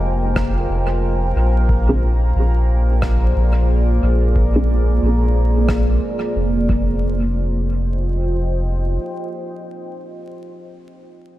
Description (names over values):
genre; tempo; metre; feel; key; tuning
ambient dub; 90 BPM; 4/4; swing 60% on 16ths; F dorian; A4 = 440 Hz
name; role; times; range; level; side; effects
deep dark ambient pad; sustained chords; 0.0-10.5 s; Bb3 to Ab5; -24 LUFS; right 1 dB; chorus, built-in reverb
soft dub sub bass; bass; 0.0-9.0 s; F1 to Bb1; -17 LUFS; equal; none
bubbling stepped-filter texture; texture; 0.0-7.0 s; Bb3 to Bb4; -29 LUFS; equal; chorus, built-in reverb
electronic kick drum; drums; 0.4-6.8 s; none; -23 LUFS; equal; none
rim click; drums; 0.4-5.8 s; none; -30 LUFS; equal; dub echo
filtered dub chord stab; stabs; 1.9-10.0 s; Ab3 to Ab4; -26 LUFS; right 1 dB; phaser, wide subtle chorus, dub echo
room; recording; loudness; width
small room ambience; vinyl crackle; -15 LUFS; side -15 dB against mid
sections
0.0-7.0 A section; 7.0-9.7 B section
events
filter sweep on synth stab 0.0-7.0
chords
0.0 Fm7; 1.7 Bb7; 6.7 Fm7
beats
0.36 1.02 | 1.69 2.36 3.02 3.69 | 4.36 5.02 5.69 6.36 | 7.02 7.69 8.36 9.02